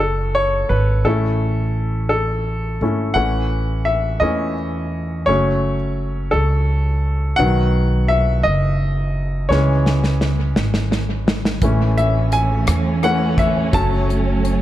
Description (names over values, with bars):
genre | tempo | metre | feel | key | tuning
six-eight pop ballad | 57 BPM (dotted quarters) | 6/8 | straight | unclear | A4 = 440 Hz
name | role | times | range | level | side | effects
bright upright piano | accompaniment | 0.0-14.6 s | D#3 to A5 | -20 LUFS | left 2 dB | none
upright bass | bass | 0.0-14.6 s | F#1 to E2 | -19 LUFS | equal | none
modern studio drum kit | drums | 9.5-14.6 s | hi-hat, kick drum, rim click, snare drum | -21 LUFS | equal | tape echo
warm symphonic string section | sustained chords | 11.6-14.6 s | E3 to C#4 | -23 LUFS | right 4 dB | none
room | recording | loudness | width
light reverb, small room ambience | echo-heavy mix | -16 LUFS | side -13 dB against mid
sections
0.0-3.2 A section; 3.2-14.6 B section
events
upright piano solo 0.0-3.2, 3.2-14.6; drum fill 9.5-11.6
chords
0.0 F#madd9; 1.0 A; 5.3 F#m; 7.4 B; 9.5 C#m; 11.6 A; 13.7 F#m